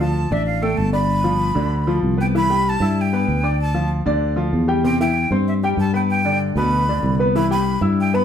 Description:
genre	latin, salsa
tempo	192 BPM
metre	4/4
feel	straight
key	C major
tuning	A4 = 440 Hz
part	breathy bright jazz flute	melody	0.0-8.2 s	E5 to B5	-23 LUFS	right 1 dB	none
part	bright upright piano	accompaniment	0.0-8.2 s	B2 to E6	-22 LUFS	left 1 dB	none
part	sustaining fretless electric bass	bass	0.0-8.2 s	G1 to G2	-20 LUFS	left 1 dB	none
room	wet studio reverb, RT60 0.7 s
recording	heard from further back in the room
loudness	-16 LUFS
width	side -8 dB against mid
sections	0.0-2.3 A section; 2.3-8.2 A section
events	none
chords	0.0 Dm; 1.1 G7; 2.3 Cmaj7; 3.6 Dm; 4.8 Cmaj7/E; 6.1 G; 7.3 Cmaj7

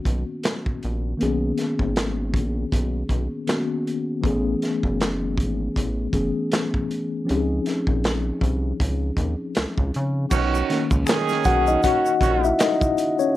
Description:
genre	R&B, neo-soul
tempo	79 BPM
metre	4/4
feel	swing 58% on 16ths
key	B major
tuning	A4 = 440 Hz
part	mellow tine electric piano	accompaniment	0.0-13.4 s	D#3 to F#5	-23 LUFS	left 3 dB	medium stereo tremolo
part	rubbery square bass	bass	0.1-12.5 s	F#1 to C#3	-25 LUFS	equal	none
part	crunchy breakbeat drum kit	drums	0.1-13.2 s	crash cymbal, handclaps, hi-hat, kick drum, snare drum	-24 LUFS	equal	none
part	mellow horn section	stabs	10.3-12.5 s	D#3 to G#4	-24 LUFS	right 8 dB	none
part	egg shaker and finger snaps	percussion	10.3-13.3 s	none	-35 LUFS	left 5 dB	none
room	light reverb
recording	none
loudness	-20 LUFS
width	side -15 dB against mid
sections	0.0-10.3 A section; 10.3-13.4 B section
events	tine electric piano solo 10.3-13.4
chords	0.0 Bmaj9; 4.2 Amaj9; 7.3 C#maj9; 10.3 Bmaj9

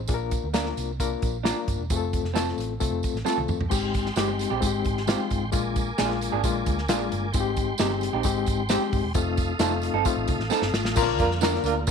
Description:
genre	uptempo 1960s-style soul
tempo	132 BPM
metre	4/4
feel	straight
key	Bb mixolydian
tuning	A4 = 438 Hz
part	vintage muted picked electric bass	bass	0.0-11.9 s	E1 to Bb2	-30 LUFS	right 1 dB	none
part	overdriven reed electric piano	accompaniment	0.1-11.9 s	Ab3 to Bb4	-28 LUFS	left 12 dB	fast tremolo
part	natural country drum kit	drums	0.1-11.9 s	crash cymbal, hi-hat, kick drum, snare drum, toms	-28 LUFS	right 1 dB	none
part	tambourine	percussion	0.1-11.9 s	none	-36 LUFS	right 17 dB	none
part	electric guitar through a small old amp	stabs	0.5-11.5 s	Ab3 to Bb4	-29 LUFS	right 16 dB	wide subtle chorus
part	tonewheel organ	sustained chords	3.7-11.9 s	D3 to Eb6	-33 LUFS	right 2 dB	chorus vibrato, stopped rotary speaker
part	mellow horn section	second line	11.2-11.7 s	Bb3 to Bb4	-27 LUFS	right 15 dB	none
room	small room ambience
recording	1960s-style stereo with parts hard left and right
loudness	-23 LUFS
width	side -6 dB against mid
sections	0.0-3.7 A section; 3.7-11.0 B section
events	drum fill 3.3-3.7, 10.5-11.0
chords	0.1 Bb; 1.9 F; 3.7 Abmaj7; 5.5 Bb7; 7.3 Abmaj7; 9.2 F7; 11.0 Bb

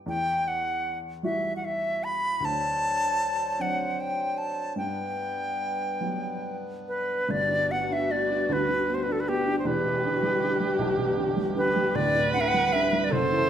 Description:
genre	celtic folk, Celtic slow air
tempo	51 BPM (dotted quarters)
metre	6/8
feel	rubato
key	G major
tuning	A4 = 441 Hz
part	dark upright piano	accompaniment	0.0-13.5 s	D1 to F#4	-31 LUFS	right 1 dB	none
part	bright reedy wooden flute	melody	0.1-13.5 s	G4 to B5	-26 LUFS	equal	none
part	pedal harmonium	sustained chords	2.4-13.5 s	D3 to C5	-37 LUFS	equal	none
part	dark viola	second line	7.3-13.5 s	F#4 to B4	-29 LUFS	right 1 dB	none
room	moderate recital hall reverb, RT60 1.4 s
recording	minimal, uncompressed stereo recording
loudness	-24 LUFS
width	side -9 dB against mid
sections	0.0-7.3 A section; 7.3-13.5 B section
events	none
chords	0.1 Emadd9; 2.4 D7; 4.8 Gmaj7; 7.3 G; 9.6 Em7; 11.9 D7sus4

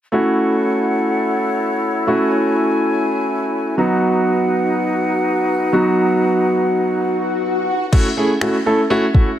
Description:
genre	dance-pop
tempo	123 BPM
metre	4/4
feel	straight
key	F# dorian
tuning	A4 = 440 Hz
part	warm concert grand piano	accompaniment	0.1-9.3 s	F#3 to A4	-17 LUFS	right 1 dB	sidechain pumping
part	mellow hollow flute section	sustained chords	0.1-7.9 s	D#4 to G#5	-20 LUFS	left 2 dB	sidechain pumping
part	swell	sound effects	6.6-7.9 s	none	-25 LUFS	left 3 dB	none
part	smooth R&B drum kit	drums	7.9-9.3 s	crash cymbal, finger snaps, kick drum	-16 LUFS	equal	none
room	light reverb, studio reverb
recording	none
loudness	-15 LUFS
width	side -11 dB against mid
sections	0.1-7.9 A section; 7.9-9.4 B section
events	swell 6.6-7.9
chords	0.1 F#m7; 3.8 B; 7.9 F#m7

